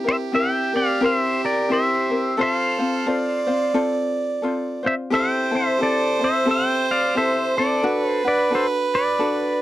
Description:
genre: Hawaiian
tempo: 88 BPM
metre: 4/4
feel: swing 60% on 8ths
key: C major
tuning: A4 = 440 Hz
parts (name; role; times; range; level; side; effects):
- clear fiddle; second line; 0.0-9.6 s; G4 to D5; -24 LUFS; right 4 dB; none
- ukulele; accompaniment; 0.0-9.6 s; C4 to C5; -24 LUFS; left 2 dB; none
- pedal steel guitar; melody; 0.1-9.6 s; A4 to G5; -21 LUFS; left 1 dB; none
room: light reverb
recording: dry, close 1970s-style studio recording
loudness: -18 LUFS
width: side -14 dB against mid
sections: 0.0-9.6 A section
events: none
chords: 0.0 C7; 2.4 F; 5.1 Am7; 7.8 D

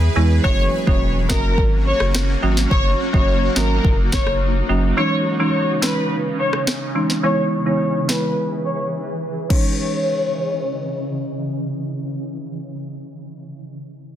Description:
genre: dancehall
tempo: 106 BPM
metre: 4/4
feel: straight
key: C# dorian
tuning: A4 = 435 Hz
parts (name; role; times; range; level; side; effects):
- granular cloud pad; sustained chords; 0.0-12.5 s; C#3 to D#5; -26 LUFS; equal; built-in reverb, sidechain pumping, low-pass filter
- saturated sub bass; bass; 0.0-4.9 s; E1 to E2; -19 LUFS; equal; none
- folk marimba with hard mallets; accompaniment; 0.2-13.0 s; E3 to F#4; -23 LUFS; right 2 dB; sidechain pumping, low-pass filter
- warm studio violin section; melody; 0.4-11.2 s; A#4 to C#5; -23 LUFS; left 2 dB; low-pass filter, tape echo
- afro-pop drum kit; drums; 0.4-9.6 s; crash cymbal, kick drum, rim click, snare drum; -20 LUFS; equal; soft clipping on snare
room: little or no reverb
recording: dense, heavily limited modern master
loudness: -17 LUFS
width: side -11 dB against mid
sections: 0.4-9.5 A section; 9.5-11.8 B section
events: filter sweep 0.4-9.5; break 8.4-9.5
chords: 0.4 F#; 5.0 C#madd9; 7.2 E; 9.5 C#madd9

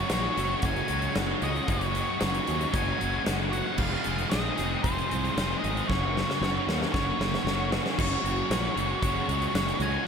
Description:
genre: rock, shoegaze and dream pop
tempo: 114 BPM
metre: 4/4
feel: straight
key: Gb lydian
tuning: A4 = 440 Hz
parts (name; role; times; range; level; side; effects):
- octave-fuzz lead guitar; melody; 0.0-10.1 s; C5 to Ab5; -32 LUFS; equal; distortion, ping-pong delay
- overdriven electric guitar; riff; 0.0-10.1 s; F2 to Ab4; -29 LUFS; equal; ensemble chorus
- fuzz fingered electric bass; bass; 0.0-10.0 s; F1 to Eb2; -31 LUFS; equal; overdrive
- huge arena drum kit; drums; 0.1-9.9 s; crash cymbal, hi-hat, kick drum, snare drum; -31 LUFS; equal; none
room: moderate huge ambient reverb, RT60 4.9 s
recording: dreamy mix soaked in reverb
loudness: -25 LUFS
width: side -6 dB against mid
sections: 0.0-8.0 A section; 8.0-10.1 B section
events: drum fill 5.9-8.0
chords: 0.0 Gbsus2; 3.8 Fm7; 5.9 Gb; 8.0 Gbsus2

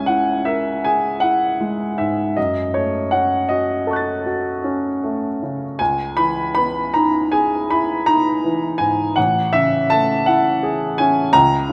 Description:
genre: classical, impressionist solo piano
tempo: 51-57 BPM (dotted quarters)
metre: 9/8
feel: rubato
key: C# minor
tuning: A4 = 440 Hz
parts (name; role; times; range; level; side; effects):
- clear baby grand piano; solo; 0.0-11.7 s; A1 to A6; -19 LUFS; equal; none
room: moderate concert hall reverb, RT60 2.2 s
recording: none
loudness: -19 LUFS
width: mono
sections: 0.0-11.7 A section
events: none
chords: 0.0 C#m6; 2.4 F#m6; 5.8 C#m9; 9.2 Amaj7

